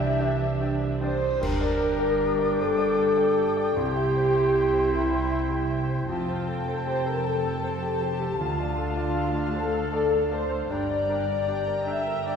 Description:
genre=cinematic, emotional film score for orchestra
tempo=52 BPM (dotted quarters)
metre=6/8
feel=rubato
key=unclear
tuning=A4 = 441 Hz
part: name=dark studio violin section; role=melody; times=0.0-12.4 s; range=E4 to E5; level=-36 LUFS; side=left 3 dB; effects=none
part: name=concert flute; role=second line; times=0.0-12.4 s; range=G4 to D6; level=-36 LUFS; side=left 2 dB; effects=none
part: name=dark studio violin section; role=second line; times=0.0-12.4 s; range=G4 to Bb5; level=-38 LUFS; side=left 2 dB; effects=none
part: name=clear concert grand piano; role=accompaniment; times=0.0-12.4 s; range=C2 to E5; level=-33 LUFS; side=equal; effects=none
part: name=dark studio viola section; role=accompaniment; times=0.0-12.4 s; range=G3 to E5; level=-31 LUFS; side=equal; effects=none
part: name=mellow French horn section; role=sustained chords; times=0.0-12.4 s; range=E3 to E5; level=-27 LUFS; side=left 2 dB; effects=none
part: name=clear studio double bass section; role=bass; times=0.0-12.4 s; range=F1 to D2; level=-32 LUFS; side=right 2 dB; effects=none
part: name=warm studio cello section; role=bass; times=0.0-12.4 s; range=D2 to E3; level=-34 LUFS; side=right 1 dB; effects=none
part: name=bright clarinet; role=second line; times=0.2-12.4 s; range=C4 to E4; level=-34 LUFS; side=right 3 dB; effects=none
part: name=clear oboe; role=second line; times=0.2-12.4 s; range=F5 to G5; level=-39 LUFS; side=right 1 dB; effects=none
part: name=clash cymbals and concert bass drum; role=percussion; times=1.4-3.0 s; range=none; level=-34 LUFS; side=equal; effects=none
room=wet scoring stage reverb, RT60 1.6 s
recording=heard from further back in the room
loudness=-23 LUFS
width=side -7 dB against mid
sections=0.0-1.4 A section; 1.4-12.4 B section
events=band accent 1.4-2.2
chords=0.0 Cadd9; 1.4 Gm; 3.8 C; 6.1 Fadd9; 8.4 Dm; 10.7 Gm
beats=0.20 | 1.42 2.60 | 3.77 4.92 | 6.08 7.25 | 8.40 9.54 | 10.70 11.87

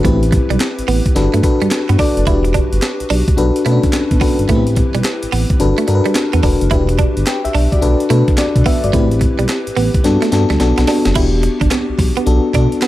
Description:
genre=R&B, new jack swing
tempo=108 BPM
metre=4/4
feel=swing 64% on 16ths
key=E minor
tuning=A4 = 441 Hz
part: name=FM electric piano with soft pad layer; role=accompaniment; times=0.0-12.9 s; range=B3 to G5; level=-17 LUFS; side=left 3 dB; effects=chorus, tremolo
part: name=direct-recorded clean electric guitar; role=riff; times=0.0-12.9 s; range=G3 to E4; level=-22 LUFS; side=right 6 dB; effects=analog chorus
part: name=smooth synth bass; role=bass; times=0.0-12.7 s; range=E1 to B2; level=-15 LUFS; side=equal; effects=none
part: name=breakbeat sampler-style drum kit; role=drums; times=0.0-12.9 s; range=crash cymbal, handclaps, hi-hat, kick drum, snare drum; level=-17 LUFS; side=equal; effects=none
room=light reverb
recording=none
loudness=-12 LUFS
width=side -15 dB against mid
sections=0.0-11.2 A section; 11.2-12.9 B section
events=drum fill 10.0-11.2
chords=0.0 Am7; 1.2 Gmaj7; 2.3 Em7; 3.4 Bm7; 4.5 Am7; 5.6 Gmaj7; 6.7 Em7; 7.8 Bm7; 8.9 Am7; 10.0 Gmaj7; 10.6 Bm7; 11.2 Em7; 12.3 Bm7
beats=| 0.04 0.60 1.16 1.71 | 2.27 2.82 3.38 3.93 | 4.49 5.04 5.60 6.16 | 6.71 7.27 7.82 8.38 | 8.93 9.49 10.04 10.60 | 11.16 11.71 12.27 12.82

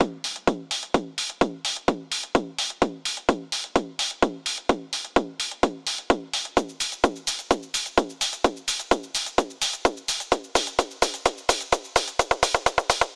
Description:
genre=EDM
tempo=128 BPM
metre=4/4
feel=straight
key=none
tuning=none
part: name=electronic hi-hat and shaker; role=drums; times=0.0-13.1 s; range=none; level=-26 LUFS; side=equal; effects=overdrive
part: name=electronic kick drum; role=drums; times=0.0-13.1 s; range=none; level=-20 LUFS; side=equal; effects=overdrive, high-pass filter on kick
room=little or no reverb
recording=high-pass filter, small speaker sound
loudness=-22 LUFS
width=side -37 dB against mid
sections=0.0-13.2 A section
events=build-up 0.0-13.2; drum fill 6.6-13.1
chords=none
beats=0.01 0.48 | 0.94 1.41 1.88 2.35 | 2.82 3.29 3.76 4.23 | 4.70 5.16 5.63 6.10 | 6.57 7.04 7.51 7.98 | 8.45 8.91 9.38 9.85 | 10.32 10.79 11.26 11.73 | 12.20 12.66

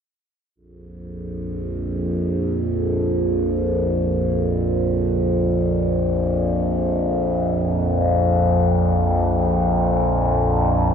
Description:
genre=ambient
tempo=free time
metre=none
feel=none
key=unclear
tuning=A4 = 440 Hz
part: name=overtone-sweeping drone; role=solo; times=1.0-10.9 s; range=Bb1 to F2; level=-18 LUFS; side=equal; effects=chorus, built-in reverb, analog delay
room=wet lush hall reverb, RT60 3.0 s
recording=dreamy mix soaked in reverb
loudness=-18 LUFS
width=side -7 dB against mid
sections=0.5-10.9 A section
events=none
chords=0.5 Bb5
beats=free time

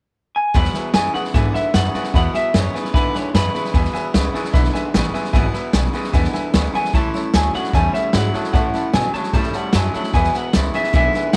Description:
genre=rockabilly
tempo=150 BPM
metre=4/4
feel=straight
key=E mixolydian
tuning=A4 = 440 Hz
part: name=electric guitar through a small old amp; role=melody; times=0.4-11.4 s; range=B4 to B5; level=-24 LUFS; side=equal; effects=tape echo
part: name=picked steel-string acoustic guitar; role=accompaniment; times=0.5-11.4 s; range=E2 to E4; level=-31 LUFS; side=equal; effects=none
part: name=warm upright piano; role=accompaniment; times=0.5-11.3 s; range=B4 to B5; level=-31 LUFS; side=equal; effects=none
part: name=electric guitar through a small old amp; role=riff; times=0.5-11.4 s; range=E2 to G3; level=-28 LUFS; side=equal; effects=none
part: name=upright bass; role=bass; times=0.5-11.4 s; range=G#1 to B2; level=-23 LUFS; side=equal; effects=none
part: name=vintage drum kit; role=drums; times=0.5-11.4 s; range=hi-hat, kick drum, snare drum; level=-22 LUFS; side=equal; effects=none
room=small room ambience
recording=none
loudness=-19 LUFS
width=mono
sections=0.5-11.4 A section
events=none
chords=0.0 N.C.; 0.5 E; 6.9 A; 10.1 E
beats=0.15 | 0.55 0.95 1.35 1.75 | 2.14 2.54 2.94 3.34 | 3.74 4.14 4.54 4.94 | 5.34 5.74 6.14 6.54 | 6.94 7.34 7.74 8.14 | 8.54 8.94 9.34 9.74 | 10.14 10.54 10.94 11.34

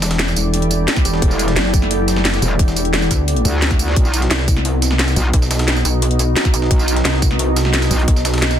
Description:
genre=dark technical drum and bass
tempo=175 BPM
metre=4/4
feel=straight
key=E minor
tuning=A4 = 438 Hz
part: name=deep dark ambient pad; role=sustained chords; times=0.0-8.6 s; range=B3 to D#5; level=-24 LUFS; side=right 1 dB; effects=chorus, built-in reverb, sidechain pumping
part: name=pulsing pluck wobble bass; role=bass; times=0.0-8.6 s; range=E1 to D2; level=-18 LUFS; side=equal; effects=chorus
part: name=breakbeat sampler-style drum kit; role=drums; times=0.0-8.6 s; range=hi-hat, snare drum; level=-28 LUFS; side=equal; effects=high-pass filter on hats, high-pass filter on snare
part: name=drum and bass drum kit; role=drums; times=0.0-8.6 s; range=hi-hat, snare drum, tambourine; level=-20 LUFS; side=equal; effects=none
part: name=deep dark ambient pad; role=texture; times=0.1-8.6 s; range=E4 to D#5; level=-24 LUFS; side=equal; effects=chorus, built-in reverb, sidechain pumping
part: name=electronic kick drum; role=drums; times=1.0-8.1 s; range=none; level=-15 LUFS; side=equal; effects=none
part: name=metallic wobble bass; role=bass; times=1.2-8.1 s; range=E1 to D2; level=-17 LUFS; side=equal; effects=distortion, chorus, tube saturation, sidechain pumping
room=little or no reverb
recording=dense, heavily limited modern master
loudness=-14 LUFS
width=side -10 dB against mid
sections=0.0-8.6 A section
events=none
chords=0.0 Em7; 4.0 B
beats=0.19 0.54 0.88 | 1.22 1.56 1.91 2.25 | 2.59 2.94 3.28 3.62 | 3.96 4.31 4.65 4.99 | 5.34 5.68 6.02 6.36 | 6.71 7.05 7.39 7.74 | 8.08 8.42

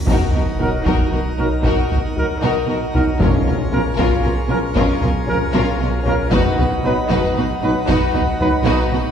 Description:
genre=cinematic, epic orchestral film score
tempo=77 BPM (dotted quarters)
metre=12/8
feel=straight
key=unclear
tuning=A4 = 443 Hz
part: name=cymbal swell and sub drop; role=sound effects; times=0.0-3.2 s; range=none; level=-29 LUFS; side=equal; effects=none
part: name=warm symphonic violin section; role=melody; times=0.1-9.0 s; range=A#4 to B4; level=-26 LUFS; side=left 5 dB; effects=none
part: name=warm symphonic violin section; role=second line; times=0.1-9.0 s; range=E#4 to F#4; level=-26 LUFS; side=left 4 dB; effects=none
part: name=warm symphonic viola section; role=accompaniment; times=0.1-9.0 s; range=C#4 to D#4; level=-26 LUFS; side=right 2 dB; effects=none
part: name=pipe organ, plenum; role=sustained chords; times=0.1-9.1 s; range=D#4 to D#5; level=-27 LUFS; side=equal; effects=none
part: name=warm studio cello section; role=bass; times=0.1-9.0 s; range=B2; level=-24 LUFS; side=right 2 dB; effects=none
part: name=warm symphonic double bass section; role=bass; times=0.1-9.0 s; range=B1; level=-23 LUFS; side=right 1 dB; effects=none
part: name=taiko ensemble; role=drums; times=0.1-8.6 s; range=none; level=-21 LUFS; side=equal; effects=none
part: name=mellow French horn section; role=sustained chords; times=0.6-8.5 s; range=E#3 to D#4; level=-26 LUFS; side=left 1 dB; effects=none
part: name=mellow trumpet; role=stabs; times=0.6-8.5 s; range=A#4 to B4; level=-26 LUFS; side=right 3 dB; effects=none
part: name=timpani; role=percussion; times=3.2-3.9 s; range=B2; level=-26 LUFS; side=left 1 dB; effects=none
room=wet scoring stage reverb, RT60 2.1 s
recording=heard from further back in the room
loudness=-15 LUFS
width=side -8 dB against mid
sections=0.1-9.1 A section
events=impact 0.1-3.2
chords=0.1 D#m/B; 3.2 C#6/B; 6.3 B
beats=| 0.09 0.87 1.65 2.43 | 3.21 3.98 4.76 5.54 | 6.32 7.10 7.88 8.66

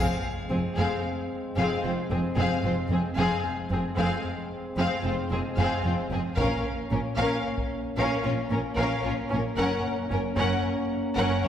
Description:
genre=cinematic, epic orchestral film score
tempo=75 BPM (dotted quarters)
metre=12/8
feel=straight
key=F phrygian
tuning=A4 = 440 Hz
part: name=warm symphonic violin section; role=melody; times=0.0-11.5 s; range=Ab4 to Gb5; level=-33 LUFS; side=left 3 dB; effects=none
part: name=warm symphonic violin section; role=second line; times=0.0-11.5 s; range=C4 to Bb4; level=-33 LUFS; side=left 3 dB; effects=none
part: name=warm symphonic viola section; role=accompaniment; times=0.0-11.5 s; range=C4 to Db4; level=-33 LUFS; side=right 1 dB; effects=none
part: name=mellow French horn section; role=sustained chords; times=0.0-11.5 s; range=Ab3 to Db4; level=-33 LUFS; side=left 1 dB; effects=none
part: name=rich chamber double bass section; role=bass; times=0.0-11.5 s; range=F1 to Bb1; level=-32 LUFS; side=right 2 dB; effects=none
part: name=rich symphonic cello section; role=bass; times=0.0-11.5 s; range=F2 to Bb2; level=-31 LUFS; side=right 2 dB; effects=none
part: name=solo taiko drums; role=drums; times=6.4-7.8 s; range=none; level=-34 LUFS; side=equal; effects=none
room=wet scoring stage reverb, RT60 2.1 s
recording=heard from further back in the room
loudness=-25 LUFS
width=side -9 dB against mid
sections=0.0-11.5 A section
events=none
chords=0.0 Fm; 6.4 Bbm; 9.6 Gb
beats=0.78 1.58 2.38 | 3.18 3.98 4.78 5.58 | 6.38 7.18 7.98 8.78 | 9.58 10.38 11.18

